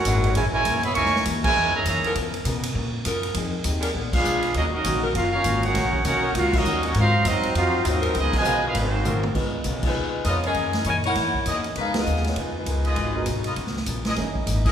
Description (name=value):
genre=jazz, big band swing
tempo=200 BPM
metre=4/4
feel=swing 62% on 8ths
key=Db major, Db mixolydian from 9.3 s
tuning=A4 = 440 Hz
part: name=bright trumpet section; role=melody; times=0.0-9.2 s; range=Bb3 to Db6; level=-23 LUFS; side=right 2 dB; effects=none
part: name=dark trombone section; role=second line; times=0.0-2.1, 4.1-9.2 s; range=Cb3 to Gb4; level=-27 LUFS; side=right 1 dB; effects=none
part: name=upright bass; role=bass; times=0.0-14.7 s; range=Gb1 to Db3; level=-26 LUFS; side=equal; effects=none
part: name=swinging big-band drum kit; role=drums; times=0.0-14.7 s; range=crash cymbal, hi-hat, kick drum, ride cymbal, snare drum, toms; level=-29 LUFS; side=equal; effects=none
part: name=picked steel-string acoustic guitar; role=accompaniment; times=0.1-14.7 s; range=Gb2 to Bb4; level=-31 LUFS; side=left 3 dB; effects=none
part: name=clear saxophone section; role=sustained chords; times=0.1-9.4 s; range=Fb3 to Eb5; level=-32 LUFS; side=left 1 dB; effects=none
part: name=warm grand piano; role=accompaniment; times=9.3-14.6 s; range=Ab3 to Cb5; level=-33 LUFS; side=right 3 dB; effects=none
part: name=warm saxophone section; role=melody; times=9.9-14.7 s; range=Ab3 to Ab5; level=-26 LUFS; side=left 2 dB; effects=none
part: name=bright trumpet section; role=stabs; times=10.2-14.7 s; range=Fb4 to Eb5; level=-30 LUFS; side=left 1 dB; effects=none
room=wet recital hall reverb, RT60 1.7 s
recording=recorded in a church or concert hall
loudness=-20 LUFS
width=side -9 dB against mid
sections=0.0-9.3 A section; 9.3-14.7 B section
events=band accent 1.4, 4.1, 6.5, 8.3, 9.8, 11.9; drum fill 9.0-9.3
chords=0.0 Gb13; 2.2 Db13; 3.4 Fm7; 4.0 Bb7b9; 4.6 Ebm7; 6.9 Ab13; 8.1 Db13; 8.7 Ab13; 9.3 Db13; 10.6 Gb13; 11.8 Db13; 13.0 Abm7; 13.6 Db13; 14.2 Gb13